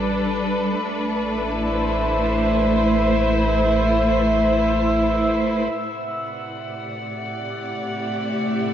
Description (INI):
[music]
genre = ambient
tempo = free time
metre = none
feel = none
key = unclear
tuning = A4 = 440 Hz
[part]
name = rich studio string section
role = sustained chords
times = 0.0-8.7 s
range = A2 to E5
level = -21 LUFS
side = equal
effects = shimmer reverb
[part]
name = warm sub bass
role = bass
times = 0.0-5.7 s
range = A1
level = -26 LUFS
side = right 1 dB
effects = none
[part]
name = drifting glass-harmonics texture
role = texture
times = 1.3-8.7 s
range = E5 to F#5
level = -24 LUFS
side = left 1 dB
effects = chorus, built-in reverb, shimmer reverb
[part]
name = organ-like drone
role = drone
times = 6.7-8.7 s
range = A3 to E4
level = -30 LUFS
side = left 2 dB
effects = ensemble chorus, built-in reverb
[sound]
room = wet concert hall reverb, RT60 2.5 s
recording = worn, warbling old tape, cassette tape, warbly pitch drift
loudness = -19 LUFS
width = side -10 dB against mid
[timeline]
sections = 0.0-5.7 A section; 5.7-8.7 B section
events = fade-in on sub bass 0.0-5.7; fade-in on string section 5.7-8.7; fade-in on synth drone 5.7-8.7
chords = 0.0 Gadd9/A; 0.8 Amadd9; 5.7 Cmaj7/A